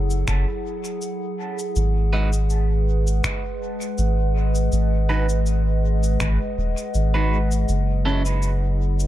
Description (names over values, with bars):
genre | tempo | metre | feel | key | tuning
ambient dub | 81 BPM | 4/4 | swing 54% on 16ths | unclear | A4 = 441 Hz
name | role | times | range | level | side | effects
warbly tape-like pad | sustained chords | 0.0-9.1 s | F#3 to F#5 | -27 LUFS | left 1 dB | chorus, built-in reverb
soft dub sub bass | bass | 0.0-9.1 s | D#1 to G#1 | -20 LUFS | equal | none
electronic cabasa and finger snaps | drums | 0.1-9.1 s | none | -30 LUFS | left 1 dB | dub echo
electronic kick drum | drums | 0.3-6.4 s | none | -30 LUFS | equal | none
electric guitar at the edge of break-up | stabs | 2.1-8.2 s | F#3 to B4 | -29 LUFS | right 3 dB | phaser, dub echo
room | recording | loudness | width
digital ambience | echo-heavy mix | -19 LUFS | side -14 dB against mid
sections
0.0-9.1 A section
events
none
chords
0.0 F#m7; 1.8 G#m7; 7.7 F#m7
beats
0.28 1.02 | 1.76 2.50 3.24 3.98 | 4.72 5.47 6.21 6.95 | 7.69 8.43